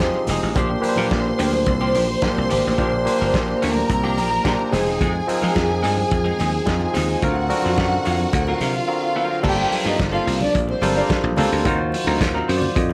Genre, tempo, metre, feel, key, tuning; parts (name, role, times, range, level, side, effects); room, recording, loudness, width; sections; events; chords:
disco; 108 BPM; 4/4; straight; Bb mixolydian; A4 = 438 Hz
warm studio string section; second line; 0.0-11.1 s; C4 to C6; -26 LUFS; equal
barky tine electric piano; accompaniment; 0.0-12.9 s; Bb2 to Eb5; -26 LUFS; equal
clean electric guitar; accompaniment; 0.0-12.9 s; F3 to C5; -30 LUFS; equal; lush chorus
dry thumbed slap bass; bass; 0.0-12.9 s; E1 to F3; -26 LUFS; equal
vintage drum kit; drums; 0.0-12.9 s; crash cymbal, hi-hat, kick drum, snare drum; -28 LUFS; equal
congas; percussion; 0.0-12.9 s; -34 LUFS; equal
moderate large studio reverb, RT60 0.9 s; -20 LUFS; mono
0.0-9.4 A section; 9.4-12.9 B section
tine electric piano fill 12.2-12.9
0.0 Fm7; 0.6 Bb6; 4.7 Fm7; 7.2 D7alt; 9.4 Gm11; 11.7 Ebm6